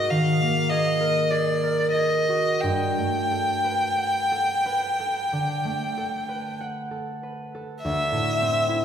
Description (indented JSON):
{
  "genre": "classical, impressionist duo for violin and harp",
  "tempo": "43-54 BPM",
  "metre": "4/4",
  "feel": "rubato",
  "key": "unclear",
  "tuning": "A4 = 440 Hz",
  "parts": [
    { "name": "rich violin", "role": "melody", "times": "0.0-8.8 s", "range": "D5 to G5", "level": "-24 LUFS", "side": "equal", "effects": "none" },
    { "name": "concert harp", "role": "accompaniment", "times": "0.0-8.8 s", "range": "D2 to F#5", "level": "-26 LUFS", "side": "equal", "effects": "none" }
  ],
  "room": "wet scoring stage reverb, RT60 1.6 s",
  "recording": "heard from further back in the room",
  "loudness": "-22 LUFS",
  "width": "side -8 dB against mid",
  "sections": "0.0-7.8 A section; 7.8-8.8 B section",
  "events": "none",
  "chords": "0.0 Ab7sus2; 2.6 Gmaj9; 7.8 D13"
}